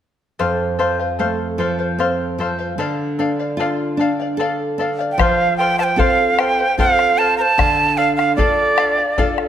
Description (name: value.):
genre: andean folk, Andean ensemble.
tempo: 75 BPM.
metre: 3/4.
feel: straight.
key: unclear.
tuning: A4 = 440 Hz.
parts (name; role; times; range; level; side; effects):
charango; accompaniment; 0.4-9.5 s; A4 to F5; -22 LUFS; left 3 dB; none.
nylon-string guitar; accompaniment; 0.4-9.5 s; F2 to A4; -21 LUFS; right 1 dB; none.
breathy bright quena; melody; 5.1-9.5 s; D5 to Bb5; -15 LUFS; right 3 dB; none.
bombo; percussion; 5.2-9.5 s; none; -21 LUFS; left 3 dB; none.
room: moderate scoring stage reverb, RT60 1.6 s.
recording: none.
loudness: -15 LUFS.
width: side -10 dB against mid.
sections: 0.4-5.2 A section; 5.2-9.5 B section.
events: none.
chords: 0.4 F; 2.8 Dm; 5.2 F; 7.6 Dm.